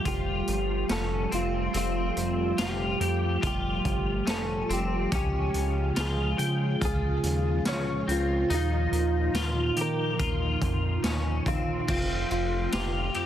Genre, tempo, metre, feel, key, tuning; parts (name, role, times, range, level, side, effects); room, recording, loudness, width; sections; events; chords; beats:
dream pop; 71 BPM; 4/4; straight; A4 = 439 Hz
direct-recorded clean electric guitar; melody; 0.0-13.3 s; F4 to Db5; -32 LUFS; equal; wide subtle chorus, digital delay
string machine, violas; sustained chords; 0.0-13.3 s; Bb2 to F4; -32 LUFS; right 1 dB; ensemble chorus
clean electric guitar; arpeggios; 0.0-13.3 s; C4 to G5; -34 LUFS; left 4 dB; ensemble chorus, digital delay
chorused synth bass; bass; 0.1-13.3 s; F1 to Eb3; -30 LUFS; equal
raw garage drum kit; drums; 0.1-13.3 s; crash cymbal, hi-hat, kick drum, ride cymbal, snare drum, tambourine; -32 LUFS; equal
small room ambience; dense, heavily limited modern master; -25 LUFS; side -11 dB against mid
0.0-11.9 A section; 11.9-13.3 B section
0.0 Fadd9; 5.1 Dbmaj7; 8.5 Ebsus2; 11.9 Fadd9
0.05 0.90 | 1.74 2.59 3.43 4.28 | 5.12 5.97 6.81 7.66 | 8.51 9.35 10.20 11.04 | 11.88 12.73